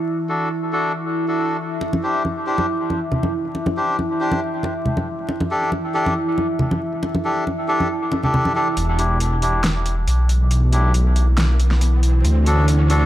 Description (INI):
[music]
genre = deep dubstep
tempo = 138 BPM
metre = 4/4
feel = swing 54% on 16ths, half-time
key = E minor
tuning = A4 = 439 Hz
[part]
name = deep dark ambient pad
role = sustained chords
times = 0.0-13.1 s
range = E4 to E5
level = -25 LUFS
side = right 1 dB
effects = chorus, built-in reverb
[part]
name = melodica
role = stabs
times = 0.3-13.1 s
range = D4 to C5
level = -23 LUFS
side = left 1 dB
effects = low-pass filter, dub echo
[part]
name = congas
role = percussion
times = 1.8-8.5 s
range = none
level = -24 LUFS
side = equal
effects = dub echo
[part]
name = dark detuned saw bass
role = bass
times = 8.8-13.1 s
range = E1 to D2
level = -16 LUFS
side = equal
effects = tube saturation
[part]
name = deep house drum kit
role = drums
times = 8.8-13.0 s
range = hi-hat, snare drum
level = -24 LUFS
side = equal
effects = low-pass filter on hats, low-pass filter on snare
[part]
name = riser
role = sound effects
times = 10.0-13.1 s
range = none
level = -32 LUFS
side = right 1 dB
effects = none
[sound]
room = light reverb, digital ambience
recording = dry, gritty hardware recording, vinyl crackle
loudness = -17 LUFS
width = side -13 dB against mid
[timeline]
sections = 0.0-8.8 A section; 8.8-13.1 B section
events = build-up 8.8-13.1; filter sweep on melodica 8.8-13.1; filter sweep on ambient pad 8.8-13.1; riser 10.0-13.1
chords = 0.0 D; 1.8 Csus2; 5.3 Gsus2; 8.8 Em7; 12.2 D